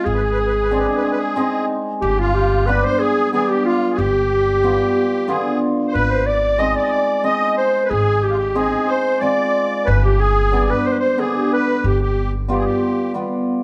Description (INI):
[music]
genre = klezmer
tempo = 92 BPM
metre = 3/4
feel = straight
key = G phrygian dominant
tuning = A4 = 440 Hz
[part]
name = warm clarinet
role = melody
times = 0.0-13.1 s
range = F4 to Eb5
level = -22 LUFS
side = equal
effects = none
[part]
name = musette accordion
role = second line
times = 0.0-13.1 s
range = F4 to Eb5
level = -25 LUFS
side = equal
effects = none
[part]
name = cimbalom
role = accompaniment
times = 0.0-13.6 s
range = D3 to F4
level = -24 LUFS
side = equal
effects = none
[part]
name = upright bass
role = bass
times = 0.1-12.6 s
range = G1 to Ab1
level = -23 LUFS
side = equal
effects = none
[sound]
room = moderate stone room reverb, RT60 1.1 s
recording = band playing live in one room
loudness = -18 LUFS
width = mono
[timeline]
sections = 0.0-13.6 A section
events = none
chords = 0.0 Ab; 2.0 G; 5.9 Ab; 9.9 G